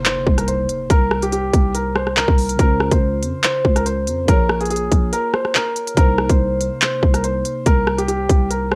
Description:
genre	hip hop, drill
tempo	142 BPM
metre	4/4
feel	half-time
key	C phrygian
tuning	A4 = 440 Hz
part	warm baby grand piano	melody	0.0-8.8 s	G4 to C5	-23 LUFS	equal	cassette tape
part	mellow tine electric piano	accompaniment	0.0-8.8 s	C3 to Db5	-30 LUFS	equal	phaser, cassette tape
part	impact	sound effects	0.0-0.9 s	none	-39 LUFS	equal	none
part	drill drum kit	drums	0.1-8.8 s	handclaps, hi-hat, kick drum, rim click	-19 LUFS	equal	none
part	growling 808-style bass	bass	0.3-8.8 s	Bb1 to F2	-24 LUFS	equal	none
room	digital ambience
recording	home recording on cassette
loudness	-18 LUFS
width	mono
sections	0.0-8.8 A section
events	impact 0.0-0.9; break 5.1-6.0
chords	0.0 Cm7; 2.6 Dbmaj7; 4.3 Bbm7; 6.0 Cm7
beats	0.06 0.48 | 0.90 1.32 1.75 2.17 | 2.59 3.01 3.44 3.86 | 4.28 4.70 5.13 5.55 | 5.97 6.39 6.82 7.24 | 7.66 8.08 8.51

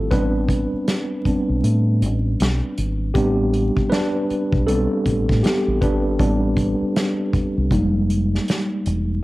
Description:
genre	R&B, neo-soul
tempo	79 BPM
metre	4/4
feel	swing 62% on 16ths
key	unclear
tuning	A4 = 439 Hz
part	tine electric piano	accompaniment	0.0-9.2 s	G3 to B4	-21 LUFS	equal	overdrive, fast stereo tremolo, cassette tape
part	deep dub fingered electric bass	bass	0.0-9.2 s	E1 to A2	-21 LUFS	equal	none
part	unplugged drum kit	drums	0.1-9.1 s	hi-hat, kick drum, snare drum	-23 LUFS	equal	cassette tape
room	light reverb, studio reverb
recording	home recording on cassette, vinyl crackle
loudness	-18 LUFS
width	side -19 dB against mid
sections	0.0-9.2 A section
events	tine electric piano solo 0.0-9.2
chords	0.1 Am11; 7.7 Fm11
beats	| 0.12 0.87 1.63 2.39 | 3.15 3.91 4.67 5.43 | 6.19 6.95 7.71 8.47 | 9.23

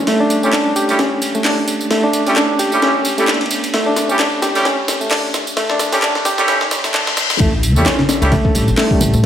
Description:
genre	breakbeat, breaks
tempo	131 BPM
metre	4/4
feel	swing 56% on 16ths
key	unclear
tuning	A4 = 440 Hz
part	barky reed electric piano	riff	0.0-9.3 s	G3 to A4	-17 LUFS	equal	overdrive, fast tremolo, low-pass filter, tape echo
part	riser, reverse cymbal and sub drop	sound effects	0.0-9.2 s	none	-26 LUFS	left 2 dB	none
part	breakbeat sampler-style drum kit	drums	0.1-9.3 s	hi-hat, kick drum, ride cymbal, snare drum	-19 LUFS	equal	high-pass filter on cymbals, high-pass filter on kick, high-pass filter on snare, high-pass filter on hats, high-pass filter on room
part	electronic tambourine and handclaps	drums	0.1-9.3 s	none	-22 LUFS	right 1 dB	none
part	bright horn section	stabs	0.4-8.3 s	G3 to G4	-19 LUFS	right 1 dB	tape echo
part	upright bass	bass	7.4-9.3 s	A1 to A2	-15 LUFS	equal	none
part	congas	percussion	8.0-9.1 s	none	-23 LUFS	right 2 dB	none
room	moderate digital room reverb, RT60 1.1 s, digital ambience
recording	high-pass filter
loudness	-13 LUFS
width	side -10 dB against mid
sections	0.0-7.4 A section; 7.4-9.3 B section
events	build-up 0.0-7.4; riser 0.0-7.4; filter sweep on reed electric piano 0.0-7.4; filter sweep 0.0-7.4; drum fill 0.1-7.4; reverse cymbal 6.5-7.4; drop 7.4-9.3; impact 7.4-9.2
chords	0.0 A7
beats	| 0.07 0.53 0.99 1.45 | 1.91 2.37 2.82 3.28 | 3.74 4.20 4.66 5.11 | 5.57 6.03 6.49 6.95 | 7.40 7.86 8.32 8.78 | 9.23

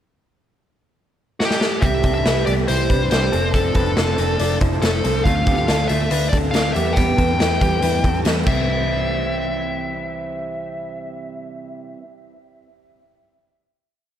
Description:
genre	jangly indie pop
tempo	140 BPM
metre	4/4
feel	straight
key	C major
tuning	A4 = 439 Hz
part	dark smooth lead guitar	melody	1.4-11.7 s	G4 to G5	-24 LUFS	left 1 dB	overdrive, dub echo
part	raw garage drum kit	drums	1.4-8.6 s	crash cymbal, hi-hat, kick drum, snare drum	-20 LUFS	equal	none
part	picked twelve-string acoustic guitar	accompaniment	1.8-12.0 s	E2 to A4	-26 LUFS	right 5 dB	dub echo
part	electric guitar through a small old amp	arpeggios	1.8-9.9 s	A3 to D5	-26 LUFS	left 4 dB	dub echo
part	vintage muted picked electric bass	bass	1.8-11.7 s	F1 to E2	-23 LUFS	equal	none
room	little or no reverb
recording	echo-heavy mix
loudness	-17 LUFS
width	side -10 dB against mid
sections	0.1-1.8 pickup bar; 1.8-8.7 verse; 8.7-12.1 final hit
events	drum fill 1.4-1.8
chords	0.1 N.C.; 1.8 C; 3.3 F6; 5.3 Dm; 6.8 Em; 8.5 C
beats	| 0.10 0.53 0.96 1.39 | 1.82 2.25 2.68 3.11 | 3.54 3.97 4.40 4.83 | 5.26 5.68 6.11 6.54 | 6.97 7.40 7.83 8.26 | 8.69 9.12 9.54 9.97 | 10.40 10.83 11.27 11.70

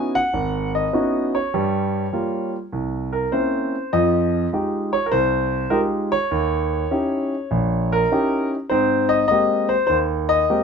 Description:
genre	solo jazz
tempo	100 BPM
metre	4/4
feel	swing 68% on 8ths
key	Ab major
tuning	A4 = 438 Hz
part	warm concert grand piano	solo	0.0-10.6 s	Ab1 to Ab5	-18 LUFS	equal	none
room	moderate studio reverb, RT60 0.7 s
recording	minimal, uncompressed stereo recording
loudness	-18 LUFS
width	side -6 dB against mid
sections	0.0-10.6 A section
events	none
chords	0.0 Dbm11; 1.5 Gm7b5; 2.7 C7b9; 3.9 Fm9; 6.3 Eb7b9; 8.7 Abmaj9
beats	0.32 0.92 | 1.52 2.12 2.71 3.31 | 3.91 4.51 5.11 5.71 | 6.31 6.91 7.51 8.11 | 8.71 9.31 9.91 10.51

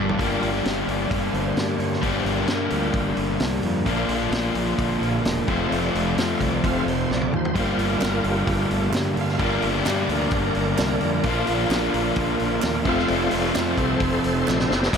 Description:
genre	classic rock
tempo	130 BPM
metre	4/4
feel	straight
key	G minor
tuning	A4 = 436 Hz
part	bright tonewheel organ	sustained chords	0.0-15.0 s	A3 to F5	-27 LUFS	right 1 dB	overdrive, chorus vibrato, fast rotary speaker
part	crunchy overdriven guitar	riff	0.0-15.0 s	F2 to G4	-25 LUFS	left 13 dB	none
part	overdriven electric guitar	riff	0.0-14.7 s	F2 to D4	-26 LUFS	right 10 dB	none
part	fuzz fingered electric bass	bass	0.0-15.0 s	E1 to G2	-28 LUFS	equal	overdrive
part	vintage drum kit	drums	0.1-15.0 s	crash cymbal, hi-hat, kick drum, snare drum, toms	-28 LUFS	equal	none
part	group handclap	percussion	8.0-14.6 s	none	-36 LUFS	right 9 dB	none
room	light reverb, small room ambience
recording	none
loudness	-20 LUFS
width	side -6 dB against mid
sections	0.2-14.9 A section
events	drum fill 0.0, 7.1-7.6, 14.5-14.9; tonewheel organ solo 0.2-14.9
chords	0.2 Gm7; 3.9 Bb; 5.5 F; 7.6 Gm7; 11.2 Bb; 12.9 F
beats	| 0.19 0.65 1.11 1.57 | 2.03 2.49 2.95 3.42 | 3.88 4.34 4.80 5.26 | 5.72 6.18 6.64 7.10 | 7.56 8.02 8.48 8.95 | 9.41 9.87 10.33 10.79 | 11.25 11.71 12.17 12.63 | 13.09 13.55 14.01 14.47 | 14.93

